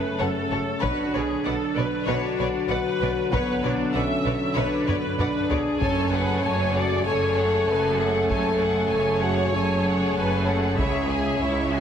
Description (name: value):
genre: cinematic, epic orchestral film score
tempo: 96 BPM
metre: 4/4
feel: straight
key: F# minor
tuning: A4 = 440 Hz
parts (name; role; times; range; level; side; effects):
- rich symphonic viola section; accompaniment; 0.0-11.8 s; A3 to E5; -30 LUFS; right 1 dB; none
- dark French horn section; sustained chords; 0.0-11.8 s; B3 to A4; -26 LUFS; left 2 dB; none
- warm trombone section; sustained chords; 0.0-11.8 s; C#3 to A3; -31 LUFS; right 2 dB; none
- clear studio violin section; melody; 0.2-11.8 s; C#5 to G#5; -32 LUFS; left 4 dB; none
- warm symphonic violin section; second line; 0.2-11.8 s; E4 to E5; -30 LUFS; left 2 dB; none
- rich symphonic cello section; bass; 0.2-11.8 s; C#2 to B2; -30 LUFS; right 2 dB; none
- rich symphonic double bass section; bass; 0.2-11.8 s; F#1 to C#2; -31 LUFS; right 3 dB; none
- taiko ensemble; drums; 0.8-11.4 s; none; -31 LUFS; equal; none
room: wet concert hall reverb, RT60 2.1 s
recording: heavily compressed radio sound, multiband compression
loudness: -21 LUFS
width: side -8 dB against mid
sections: 0.0-11.8 A section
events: drum fill 4.9-5.8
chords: 0.0 F#m; 0.8 Bmadd9; 5.8 F#madd9; 10.8 C#m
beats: 0.20 | 0.83 1.45 2.07 2.70 | 3.32 3.94 4.56 5.19 | 5.81 6.43 7.05 7.68 | 8.30 8.92 9.54 10.17 | 10.79 11.41